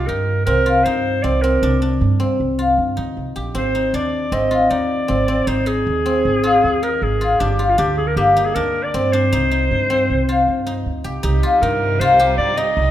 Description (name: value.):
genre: contemporary instrumental, chamber music in an uneven meter.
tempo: 156 BPM.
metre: 5/4.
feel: straight.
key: C minor.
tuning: A4 = 443 Hz.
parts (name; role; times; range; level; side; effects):
clear clarinet; melody; 0.0-12.9 s; F4 to Eb5; -20 LUFS; left 1 dB; none.
guzheng; arpeggios; 0.0-12.9 s; Bb3 to G4; -18 LUFS; left 1 dB; none.
upright bass; bass; 0.0-12.9 s; G1 to G2; -21 LUFS; right 2 dB; none.
rich studio string section; sustained chords; 11.2-12.9 s; C3 to Eb4; -27 LUFS; right 1 dB; none.
room: moderate recital hall reverb, RT60 1.5 s.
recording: none.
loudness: -15 LUFS.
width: side -12 dB against mid.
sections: 0.0-11.2 A section; 11.2-12.9 B section.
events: none.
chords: 0.0 Cm7; 3.6 Ab; 7.4 Gm; 9.3 Cm.